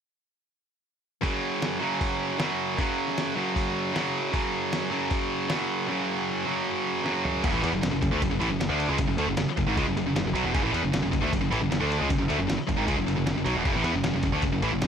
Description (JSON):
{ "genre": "heavy metal", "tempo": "154 BPM", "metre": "4/4", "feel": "straight", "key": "F# minor", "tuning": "A4 = 440 Hz", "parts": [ { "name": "heavy high-gain guitar", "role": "riff", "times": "1.2-14.9 s", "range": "E2 to D4", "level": "-29 LUFS", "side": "left 10 dB", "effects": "distortion" }, { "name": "high-gain distorted guitar", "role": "riff", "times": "1.2-14.9 s", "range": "E2 to D4", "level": "-28 LUFS", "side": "right 10 dB", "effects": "distortion" }, { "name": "lo-fi sampler-style drum kit", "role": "drums", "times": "1.2-14.9 s", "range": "crash cymbal, hi-hat, kick drum, ride cymbal, snare drum, toms", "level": "-31 LUFS", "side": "left 1 dB", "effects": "none" }, { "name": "modern bright picked electric bass", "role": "bass", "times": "7.4-14.9 s", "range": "E1 to E2", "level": "-31 LUFS", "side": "left 1 dB", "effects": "none" } ], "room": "little or no reverb", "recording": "none", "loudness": "-24 LUFS", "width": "side -7 dB against mid", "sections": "1.2-7.4 A section; 7.4-14.9 B section", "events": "drum fill 7.1-7.4", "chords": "1.2 F#5; 7.4 F#m" }